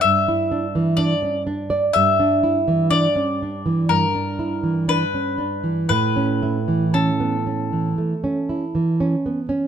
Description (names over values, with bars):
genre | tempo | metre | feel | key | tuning
romantic duo for mandolin and classical guitar | 58-64 BPM | 4/4 | rubato | unclear | A4 = 440 Hz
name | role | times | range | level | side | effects
mandolin | melody | 0.0-9.5 s | A4 to E5 | -21 LUFS | left 3 dB | plate reverb
nylon-string guitar | accompaniment | 0.0-9.7 s | G2 to D5 | -20 LUFS | right 3 dB | none
room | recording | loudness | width
light reverb | dark, warm production | -18 LUFS | side -8 dB against mid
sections
0.0-9.7 A section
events
none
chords
0.0 Em7/G; 5.9 A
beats
0.04 0.98 | 1.94 2.91 3.89 4.88 | 5.89 6.93 7.97 8.99